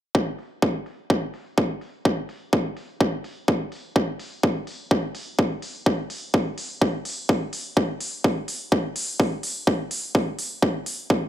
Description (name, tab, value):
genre	EDM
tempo	126 BPM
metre	4/4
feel	straight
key	none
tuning	none
part	electronic kick drum	drums	0.1-11.2 s	none	-21 LUFS	equal	high-pass filter on kick, high-pass filter on room
part	electronic hi-hat	drums	0.4-11.0 s	none	-32 LUFS	equal	low-pass filter on hats, low-pass filter on room
room	little or no reverb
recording	dark, warm production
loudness	-23 LUFS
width	side -12 dB against mid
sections	0.1-11.3 A section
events	none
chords	none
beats	| 0.15 0.62 1.10 1.58 | 2.05 2.53 3.00 3.48 | 3.96 4.43 4.91 5.39 | 5.86 6.34 6.82 7.29 | 7.77 8.24 8.72 9.20 | 9.67 10.15 10.62 11.10